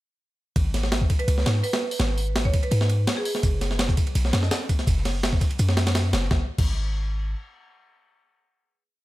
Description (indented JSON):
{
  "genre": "drum and bass, jungle",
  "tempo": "167 BPM",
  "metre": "4/4",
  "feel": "straight",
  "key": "G# minor",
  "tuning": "A4 = 440 Hz",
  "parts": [
    { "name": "warm 808-style bass", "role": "bass", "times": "0.6-7.3 s", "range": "F#1 to G#2", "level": "-23 LUFS", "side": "equal", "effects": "none" },
    { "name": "breakbeat sampler-style drum kit", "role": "drums", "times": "0.6-6.7 s", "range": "crash cymbal, hi-hat, kick drum, ride cymbal, snare drum", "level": "-24 LUFS", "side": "equal", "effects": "none" },
    { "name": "marimba with hard mallets", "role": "melody", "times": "1.2-3.3 s", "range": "G#4 to C#5", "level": "-31 LUFS", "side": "right 3 dB", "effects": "dub echo" },
    { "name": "crunchy breakbeat drum kit", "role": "drums", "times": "3.4-6.3 s", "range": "hi-hat, shaker, snare drum", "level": "-39 LUFS", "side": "right 2 dB", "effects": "high-pass filter on hats, high-pass filter on snare, high-pass filter on perc, high-pass filter on room" }
  ],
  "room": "studio reverb",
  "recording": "none",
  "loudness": "-21 LUFS",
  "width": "side -17 dB against mid",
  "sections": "0.6-6.3 drop; 6.3-9.0 final note",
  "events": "drop 0.6-6.3",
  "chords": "none",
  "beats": "| 0.56 0.92 1.28 1.64 | 2.00 2.36 2.72 3.08 | 3.44 3.80 4.16 4.51 | 4.88 5.23 5.59 5.95 | 6.31 6.67 7.03"
}